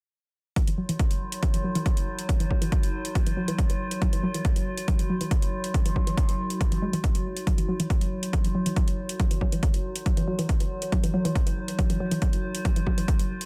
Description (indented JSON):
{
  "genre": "driving peak-time techno",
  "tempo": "139 BPM",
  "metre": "4/4",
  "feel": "straight",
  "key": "unclear",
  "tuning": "A4 = 441 Hz",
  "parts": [
    { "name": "woody wave-folded pluck", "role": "riff", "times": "0.6-13.0 s", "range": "E3 to G#3", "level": "-33 LUFS", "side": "equal", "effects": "chorus, sidechain pumping, tape echo" },
    { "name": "metallic inharmonic drone", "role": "drone", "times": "0.8-13.5 s", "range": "F#3", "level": "-35 LUFS", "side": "equal", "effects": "chorus, built-in reverb, phaser, sidechain pumping" },
    { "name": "electronic hi-hat", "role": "drums", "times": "0.6-13.5 s", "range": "none", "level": "-39 LUFS", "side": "equal", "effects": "studio ambience" },
    { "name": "electronic kick drum", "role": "drums", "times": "0.6-13.2 s", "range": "none", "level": "-27 LUFS", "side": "equal", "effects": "studio ambience" }
  ],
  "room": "light reverb",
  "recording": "echo-heavy mix",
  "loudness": "-26 LUFS",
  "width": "mono",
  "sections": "0.6-13.5 A section",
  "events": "none",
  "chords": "none"
}